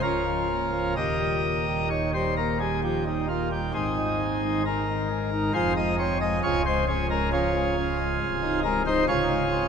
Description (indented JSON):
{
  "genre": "classical, chorale-style piece for pipe organ",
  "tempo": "67 BPM",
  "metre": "3/4",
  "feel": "uneven beats, rubato",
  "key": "Ab major",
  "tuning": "A4 = 440 Hz",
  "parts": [
    { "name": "pipe organ, principal chorus", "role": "solo", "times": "0.0-9.7 s", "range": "C1 to Eb5", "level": "-23 LUFS", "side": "equal", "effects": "none" }
  ],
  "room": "wet cathedral reverb, RT60 4.9 s",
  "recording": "minimal, uncompressed stereo recording",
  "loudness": "-23 LUFS",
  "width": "side -6 dB against mid",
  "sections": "0.0-9.7 A section",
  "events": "none",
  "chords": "0.0 Bbm/Db; 1.0 Eb; 3.8 Ab; 5.5 Fm; 6.4 Db; 8.2 Ab/C; 9.1 Dbmaj7"
}